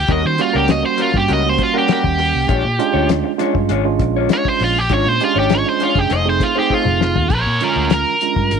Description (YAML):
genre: straight-eighth soul blues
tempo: 100 BPM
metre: 4/4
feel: straight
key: unclear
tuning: A4 = 441 Hz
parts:
  - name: cranked stack guitar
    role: melody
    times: 0.0-8.6 s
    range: C#4 to Eb5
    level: -18 LUFS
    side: right 2 dB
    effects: overdrive
  - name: vintage muted fingered electric bass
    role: bass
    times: 0.0-8.6 s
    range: F1 to Eb3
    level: -20 LUFS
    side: left 1 dB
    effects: none
  - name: tine electric piano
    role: accompaniment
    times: 0.1-8.6 s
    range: D3 to F#5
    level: -20 LUFS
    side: right 16 dB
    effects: medium stereo tremolo
  - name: electric guitar through a small old amp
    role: stabs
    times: 0.1-7.0 s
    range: G3 to C#5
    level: -23 LUFS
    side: left 15 dB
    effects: none
  - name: cloth-damped thuddy drum kit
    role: drums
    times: 0.1-8.6 s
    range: hi-hat, kick drum, snare drum, toms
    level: -21 LUFS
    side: left 5 dB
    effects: none
room: small room ambience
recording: 1960s-style stereo with parts hard left and right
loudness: -14 LUFS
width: side -6 dB against mid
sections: 0.0-7.3 A section; 7.3-8.6 B section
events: overdriven electric guitar solo 0.0-7.3; drum fill 6.7-7.3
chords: 0.1 Eb7#9; 2.5 Bb7#9; 6.1 F7#9; 7.3 Bb7#9